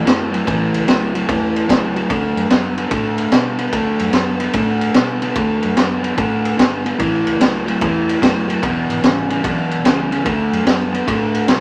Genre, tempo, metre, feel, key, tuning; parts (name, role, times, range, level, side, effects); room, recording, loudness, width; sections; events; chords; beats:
electric blues shuffle; 147 BPM; 4/4; swing 66% on 8ths; A4 = 440 Hz
overdriven electric guitar; riff; 0.0-11.6 s; E2 to B3; -20 LUFS; equal; spring reverb
vintage muted fingered electric bass; bass; 0.1-11.6 s; E1 to B2; -30 LUFS; equal
crunchy breakbeat drum kit; drums; 0.1-11.6 s; kick drum, ride cymbal, snare drum; -20 LUFS; equal
moderate small room reverb, RT60 0.5 s; vinyl crackle; -17 LUFS; mono
0.0-11.6 A section
0.0 A; 2.1 D; 7.0 A; 8.6 E; 10.3 D
0.07 | 0.47 0.88 1.29 1.69 | 2.10 2.51 2.92 3.33 | 3.73 4.14 4.55 4.96 | 5.37 5.77 6.18 6.59 | 7.00 7.41 7.81 8.22 | 8.63 9.04 9.45 9.86 | 10.26 10.67 11.08 11.49